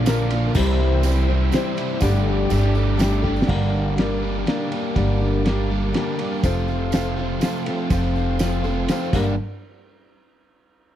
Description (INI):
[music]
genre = folk rock and heartland rock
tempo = 122 BPM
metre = 3/4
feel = straight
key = G dorian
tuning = A4 = 440 Hz
[part]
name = picked steel-string acoustic guitar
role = accompaniment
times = 0.0-9.3 s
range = G2 to C5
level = -25 LUFS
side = left 4 dB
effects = none
[part]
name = bright tonewheel organ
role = sustained chords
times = 0.0-9.4 s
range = D4 to E6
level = -36 LUFS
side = right 1 dB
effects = slow rotary speaker, chorus vibrato
[part]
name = crunchy overdriven guitar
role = riff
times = 0.0-9.3 s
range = F2 to G4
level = -26 LUFS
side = right 2 dB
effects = none
[part]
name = upright bass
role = bass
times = 0.0-9.4 s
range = F1 to C2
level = -22 LUFS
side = right 1 dB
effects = none
[part]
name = cloth-damped thuddy drum kit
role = drums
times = 0.1-9.2 s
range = crash cymbal, kick drum, ride cymbal, snare drum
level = -25 LUFS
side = equal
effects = none
[part]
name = tambourine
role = percussion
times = 0.1-3.4, 6.4-9.4 s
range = none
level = -40 LUFS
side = right 13 dB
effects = none
[sound]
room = small room ambience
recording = dry, close 1970s-style studio recording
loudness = -18 LUFS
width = side -11 dB against mid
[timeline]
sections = 0.0-3.5 A section; 3.5-9.4 B section; 9.4-10.8 C section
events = drum fill 3.2, 9.1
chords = 0.0 Bb; 0.6 C; 2.0 Gsus2; 3.5 Gm; 6.4 F; 9.1 Gm; 9.4 N.C.